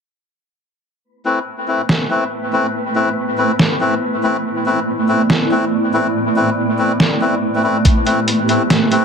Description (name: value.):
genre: deep dubstep.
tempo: 141 BPM.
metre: 4/4.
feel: swing 62% on 16ths, half-time.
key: A minor.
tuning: A4 = 442 Hz.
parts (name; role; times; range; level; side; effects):
granular cloud pad; sustained chords; 2.0-9.0 s; A3 to G4; -19 LUFS; right 2 dB; built-in reverb.
wind-like tuned noise texture; texture; 1.6-9.0 s; B3 to D5; -24 LUFS; right 1 dB; built-in reverb.
melodica; stabs; 1.3-9.0 s; A3 to B4; -18 LUFS; left 2 dB; low-pass filter, dub echo.
trip hop sampler-style drum kit; drums; 1.9-9.0 s; hi-hat, snare drum; -16 LUFS; equal; none.
electronic kick drum; drums; 7.8-8.0 s; none; -12 LUFS; equal; none.
room: moderate spring reverb, RT60 1.4 s.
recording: none.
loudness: -14 LUFS.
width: side -6 dB against mid.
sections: 1.0-9.0 A section.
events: filter sweep on ambient pad 1.0-9.0.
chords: 1.0 Amadd9.